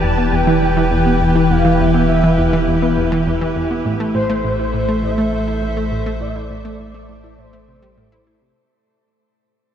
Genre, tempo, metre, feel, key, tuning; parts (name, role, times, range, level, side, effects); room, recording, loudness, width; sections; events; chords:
ambient, sequencer-driven space music; 102 BPM; 4/4; straight; A minor; A4 = 437 Hz
expressive synth lead; melody; 0.0-8.3 s; C5 to A5; -22 LUFS; equal; ensemble chorus, analog delay
evolving wavetable pad; sustained chords; 0.0-8.5 s; E3 to E5; -18 LUFS; left 1 dB; chorus, built-in reverb
analog pluck; riff; 0.0-8.5 s; E2 to E4; -19 LUFS; equal; chorus, analog delay
warm sub bass; bass; 0.0-8.5 s; E1 to A1; -23 LUFS; equal
wet shimmer reverb, RT60 7.9 s; dark, warm production; -14 LUFS; side -9 dB against mid
0.0-8.6 A section
filter sweep on synth arpeggio sound 0.0-8.6; fade-out 2.3-8.6
0.0 Em; 3.9 Am